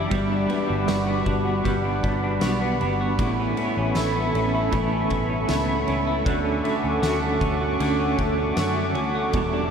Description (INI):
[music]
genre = dream pop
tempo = 78 BPM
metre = 4/4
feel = straight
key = unclear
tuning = A4 = 440 Hz
[part]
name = semi-hollow electric guitar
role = accompaniment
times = 0.0-9.7 s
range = E2 to F#4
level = -28 LUFS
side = right 4 dB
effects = tremolo, wide subtle chorus, shimmer reverb
[part]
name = warbly tape-like pad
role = sustained chords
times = 0.0-9.7 s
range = G3 to D6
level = -27 LUFS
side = right 1 dB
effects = chorus, built-in reverb, shimmer reverb
[part]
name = semi-hollow electric guitar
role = arpeggios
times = 0.0-9.7 s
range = E2 to F#4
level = -27 LUFS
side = left 2 dB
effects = wide subtle chorus, tape echo, shimmer reverb
[part]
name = vintage muted fingered electric bass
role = bass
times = 0.0-9.7 s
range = E1 to F#2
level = -28 LUFS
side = equal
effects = none
[part]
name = oversized low-tuned drum kit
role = drums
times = 0.1-9.5 s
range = kick drum, ride cymbal, snare drum, tambourine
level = -30 LUFS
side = equal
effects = none
[sound]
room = wet huge ambient reverb, RT60 8.0 s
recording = dreamy mix soaked in reverb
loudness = -21 LUFS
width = side -7 dB against mid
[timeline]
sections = 0.0-9.7 A section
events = none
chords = 0.1 Gmaj7; 3.2 Aadd9; 6.3 Dmaj7